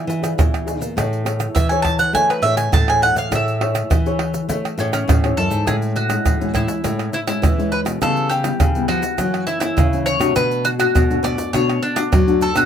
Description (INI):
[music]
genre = samba and choro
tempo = 102 BPM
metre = 4/4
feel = straight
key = A major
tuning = A4 = 440 Hz
[part]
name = bowl-back mandolin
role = melody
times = 0.0-12.7 s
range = C#4 to A5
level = -20 LUFS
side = right 1 dB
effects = none
[part]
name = nylon-string guitar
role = accompaniment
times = 0.0-12.7 s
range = F#2 to D5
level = -23 LUFS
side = left 4 dB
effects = none
[part]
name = nylon-string guitar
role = bass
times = 0.0-12.7 s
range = F#2 to A3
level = -22 LUFS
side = equal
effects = none
[part]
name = egg shaker, pandeiro, tamborim and surdo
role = percussion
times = 0.1-12.7 s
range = none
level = -20 LUFS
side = right 1 dB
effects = none
[sound]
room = moderate small room ambience, RT60 0.5 s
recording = minimal, uncompressed stereo recording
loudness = -16 LUFS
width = side -8 dB against mid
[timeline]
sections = 0.0-5.7 A section; 5.7-12.7 B section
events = mandolin solo 0.0-5.7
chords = 0.0 E7b9; 1.0 Amaj7; 8.0 C#m7b5; 9.2 F#7; 10.4 Bm7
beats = 0.38 | 0.97 1.55 2.14 2.73 | 3.31 3.90 4.49 5.08 | 5.66 6.25 6.84 7.42 | 8.01 8.60 9.19 9.77 | 10.36 10.95 11.53 12.12